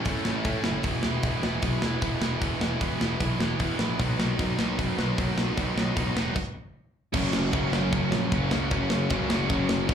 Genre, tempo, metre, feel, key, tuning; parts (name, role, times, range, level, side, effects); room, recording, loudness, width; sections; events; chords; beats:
punk rock; 152 BPM; 4/4; straight; A4 = 440 Hz
distorted electric guitar; riff; 0.0-9.9 s; E2 to B3; -32 LUFS; left 12 dB; distortion, slapback echo
distorted electric guitar; riff; 0.0-9.9 s; F#2 to E4; -30 LUFS; right 10 dB; overdrive, slapback echo
fuzz picked electric bass; bass; 0.1-9.9 s; E1 to A2; -29 LUFS; left 1 dB; overdrive
tight metal drum kit; drums; 0.1-9.9 s; crash cymbal, hi-hat, kick drum, ride cymbal, snare drum; -29 LUFS; equal
biting overdriven guitar; riff; 7.1-9.9 s; F#2 to F#3; -31 LUFS; equal
little or no reverb; live gig heard through the venue's PA, club reverb; -24 LUFS; side -8 dB against mid
0.0-7.1 A section; 7.1-9.9 B section
stop 6.4-7.1
0.0 A; 0.8 E; 4.0 B; 7.1 F#
0.05 0.44 | 0.84 1.23 1.63 2.02 | 2.42 2.81 3.20 3.60 | 3.99 4.39 4.78 5.18 | 5.57 5.96 6.36 6.75 | 7.14 7.54 7.93 8.32 | 8.71 9.10 9.50 9.89